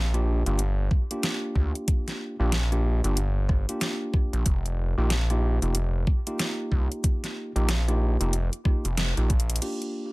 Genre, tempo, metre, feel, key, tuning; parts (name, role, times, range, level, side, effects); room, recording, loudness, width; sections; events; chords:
glitch hop; 93 BPM; 4/4; swing 61% on 16ths; G minor; A4 = 436 Hz
gritty driven synth bass; bass; 0.0-9.6 s; F1 to D2; -24 LUFS; equal
tine electric piano; stabs; 0.1-10.1 s; Bb3 to G4; -32 LUFS; equal; sidechain pumping, dub echo
pop drum kit; drums; 0.1-9.9 s; crash cymbal, hi-hat, rim click, snare drum; -30 LUFS; equal; overdrive
electronic kick drum; drums; 0.9-9.5 s; -23 LUFS; equal; overdrive
little or no reverb; -23 LUFS; side -23 dB against mid
0.0-9.6 A section
band accent 9.0-9.3; drum fill 9.3-9.6
0.0 Gm7; 4.5 F9sus4; 9.6 Gm7